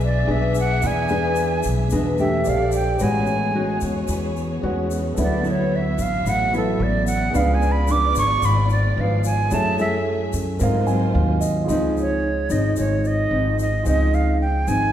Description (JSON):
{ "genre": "bossa nova", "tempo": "111 BPM", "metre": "4/4", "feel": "straight", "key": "unclear", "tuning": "A4 = 441 Hz", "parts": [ { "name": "jazz flute", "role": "melody", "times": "0.0-14.9 s", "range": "A4 to D6", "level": "-23 LUFS", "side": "right 2 dB", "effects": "none" }, { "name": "dark baby grand piano", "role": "accompaniment", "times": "0.0-14.9 s", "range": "F4 to C6", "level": "-29 LUFS", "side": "right 3 dB", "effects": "none" }, { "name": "nylon-string guitar", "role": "accompaniment", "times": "0.0-14.9 s", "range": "G#2 to G#4", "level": "-23 LUFS", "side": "left 1 dB", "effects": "none" }, { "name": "warm studio string section", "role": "sustained chords", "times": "0.0-11.7 s", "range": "A3 to E5", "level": "-31 LUFS", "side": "left 1 dB", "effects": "none" }, { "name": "upright bass", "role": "bass", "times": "0.0-14.9 s", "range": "G#1 to G#2", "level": "-22 LUFS", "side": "equal", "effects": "none" }, { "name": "tube shaker", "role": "percussion", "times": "0.0-14.9 s", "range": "none", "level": "-39 LUFS", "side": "left 7 dB", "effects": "none" } ], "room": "wet recital hall reverb, RT60 1.5 s", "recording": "recorded in a church or concert hall", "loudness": "-18 LUFS", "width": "side -10 dB against mid", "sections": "0.0-11.7 A section; 11.7-14.9 B section", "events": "flute solo 0.0-11.7; grand piano fill 10.6-11.7", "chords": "0.0 E7; 2.5 A#maj13; 3.0 Amaj13; 5.2 D69; 7.3 C#7b9; 9.5 F#m9; 10.6 G#13; 11.7 Dbmaj9" }